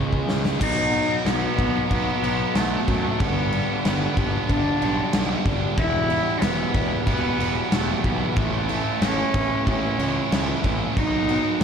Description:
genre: quiet-loud alternative rock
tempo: 93 BPM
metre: 4/4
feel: straight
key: unclear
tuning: A4 = 436 Hz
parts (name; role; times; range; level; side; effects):
- fuzz guitar; riff; 0.0-11.6 s; E2 to C#4; -29 LUFS; left 9 dB; distortion, slapback echo
- fuzz guitar; riff; 0.0-11.6 s; G2 to E#4; -28 LUFS; right 10 dB; distortion, slapback echo
- fuzz picked electric bass; bass; 0.0-11.6 s; E1 to F#2; -28 LUFS; equal; overdrive
- big rock drum kit; drums; 0.1-11.6 s; crash cymbal, kick drum, snare drum; -25 LUFS; equal; none
- warm cello; melody; 0.6-11.6 s; A3 to E4; -26 LUFS; equal; slapback echo
room: moderate lush hall reverb, RT60 2.0 s, small room ambience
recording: big arena sound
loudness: -20 LUFS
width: side -7 dB against mid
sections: 0.6-11.6 A section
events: drum fill 0.0-0.6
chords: 0.0 C#; 0.6 B; 3.2 G; 5.8 Em; 8.4 A; 11.0 B

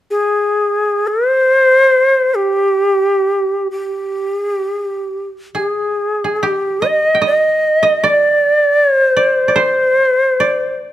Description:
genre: japanese traditional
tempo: free time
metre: none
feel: none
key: G miyako bushi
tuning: A4 = 440 Hz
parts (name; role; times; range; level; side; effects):
- bright reedy shakuhachi; melody; 0.1-10.8 s; G4 to Eb5; -12 LUFS; equal; none
- koto; second line; 5.5-10.9 s; G4 to G5; -18 LUFS; right 3 dB; none
room: light reverb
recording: close, detailed microphones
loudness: -12 LUFS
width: side -13 dB against mid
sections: 0.0-6.4 A section; 6.4-10.9 B section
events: none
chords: none

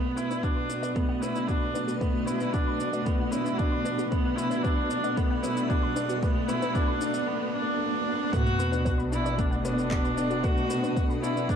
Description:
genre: piano and strings electronica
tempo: 114 BPM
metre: 4/4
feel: straight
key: B minor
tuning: A4 = 444 Hz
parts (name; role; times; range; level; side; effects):
- rich viola; melody; 0.0-11.6 s; B3 to F#4; -30 LUFS; right 1 dB; none
- granular cloud pad; sustained chords; 0.0-11.6 s; A3 to F#5; -36 LUFS; left 1 dB; built-in reverb, sidechain pumping
- warm upright piano; riff; 0.0-11.6 s; A3 to F#4; -32 LUFS; left 1 dB; none
- warm chamber cello section; bass; 0.0-11.6 s; B2; -34 LUFS; equal; sidechain pumping
- riser and sub drop; sound effects; 0.0-10.4 s; none; -36 LUFS; right 1 dB; none
- warbly dusty pluck; arpeggios; 0.2-11.6 s; B3 to B5; -39 LUFS; left 2 dB; chorus, sidechain pumping, ping-pong delay
- electronic shaker and handclaps; drums; 0.2-11.6 s; none; -43 LUFS; left 3 dB; overdrive
- electronic kick drum; drums; 0.4-11.6 s; none; -28 LUFS; equal; overdrive
room: moderate recital hall reverb, RT60 1.4 s, studio reverb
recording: dark, warm production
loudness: -25 LUFS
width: side -8 dB against mid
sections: 0.0-8.3 A section; 8.3-11.6 B section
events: build-up 0.0-8.3; riser 0.0-8.3; drop 8.3-11.6; impact 8.3-10.4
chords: 0.0 Bm7

